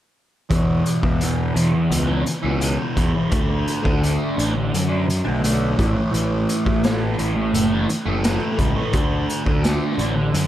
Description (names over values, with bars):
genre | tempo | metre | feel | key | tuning
psychedelic rock | 85 BPM | 4/4 | straight | unclear | A4 = 439 Hz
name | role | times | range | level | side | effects
fuzz guitar | riff | 0.5-10.5 s | E2 to D4 | -21 LUFS | equal | distortion, phaser, dub echo
fuzz picked electric bass | bass | 0.5-10.5 s | F#1 to F#2 | -23 LUFS | equal | overdrive
raw garage drum kit | drums | 0.5-10.5 s | hi-hat, kick drum, snare drum | -24 LUFS | equal | dub echo
room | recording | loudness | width
light reverb, studio reverb | echo-heavy mix | -18 LUFS | side -12 dB against mid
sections
0.5-10.5 A section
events
none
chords
0.5 E5; 3.3 D; 5.8 A5; 8.9 D5